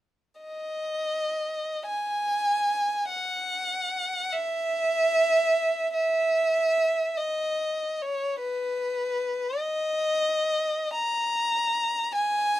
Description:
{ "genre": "classical, free, expressive piece for unaccompanied violin", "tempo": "30-52 BPM (dotted quarters)", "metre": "6/8", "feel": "rubato", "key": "unclear", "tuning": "A4 = 439 Hz", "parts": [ { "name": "clear violin", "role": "solo", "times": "0.4-12.6 s", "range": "B4 to A#5", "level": "-24 LUFS", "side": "equal", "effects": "none" } ], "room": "light reverb", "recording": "dark, warm production", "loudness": "-24 LUFS", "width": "side -14 dB against mid", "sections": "0.4-5.9 A section; 5.9-12.6 B section", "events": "none", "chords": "none", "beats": "| 0.42 1.87 | 3.10 4.34 | 5.95 7.19 | 8.40 9.58 | 10.93 12.14" }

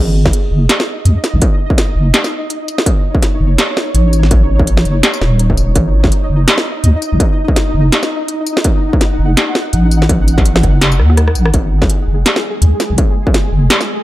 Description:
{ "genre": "half-time drum and bass", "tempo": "166 BPM", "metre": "4/4", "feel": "swing 57% on 16ths, half-time", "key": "unclear", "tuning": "A4 = 440 Hz", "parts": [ { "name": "deep soft wobble bass", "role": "bass", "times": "0.0-13.7 s", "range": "D#1 to D#2", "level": "-11 LUFS", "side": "equal", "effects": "chorus" }, { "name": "pulsing gated texture", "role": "texture", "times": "0.5-14.0 s", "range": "G#3 to F#5", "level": "-21 LUFS", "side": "equal", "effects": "chorus, built-in reverb" }, { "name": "electronic kick drum", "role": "drums", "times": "0.3-13.3 s", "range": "none", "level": "-13 LUFS", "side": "equal", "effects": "distortion" }, { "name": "industrial drum kit", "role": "drums", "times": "0.3-13.9 s", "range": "hi-hat, rim click, snare drum, tambourine", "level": "-15 LUFS", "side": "equal", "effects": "none" } ], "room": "digital ambience", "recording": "dark, warm production", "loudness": "-10 LUFS", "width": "side -16 dB against mid", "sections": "0.0-14.0 A section", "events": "drum fill 11.0-11.5", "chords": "0.0 G#5", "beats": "0.33 0.69 1.06 | 1.42 1.78 2.14 2.50 | 2.86 3.23 3.59 3.95 | 4.31 4.67 5.03 5.39 | 5.75 6.12 6.48 6.84 | 7.20 7.56 7.92 8.29 | 8.65 9.01 9.37 9.73 | 10.09 10.45 10.81 11.18 | 11.54 11.90 12.26 12.62 | 12.98 13.35 13.71" }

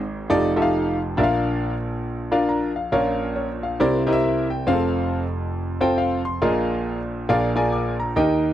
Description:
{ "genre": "gospel", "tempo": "137 BPM", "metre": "4/4", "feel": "swing 62% on 8ths", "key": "unclear", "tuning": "A4 = 441 Hz", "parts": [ { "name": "clear concert grand piano", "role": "solo", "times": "0.0-8.5 s", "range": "F1 to D6", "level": "-20 LUFS", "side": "equal", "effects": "none" } ], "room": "small room ambience", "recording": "dry, close 1970s-style studio recording", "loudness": "-20 LUFS", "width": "side -12 dB against mid", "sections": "0.0-8.5 A section", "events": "grand piano fill 5.8-6.4", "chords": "0.3 F13; 1.2 Bb; 2.9 Bbm; 3.8 C9; 4.7 F; 6.4 Bb7sus4; 7.3 Bb7", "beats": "0.30 0.74 | 1.18 1.61 2.05 2.49 | 2.93 3.36 3.80 4.24 | 4.67 5.11 5.55 5.98 | 6.42 6.85 7.29 7.73 | 8.16" }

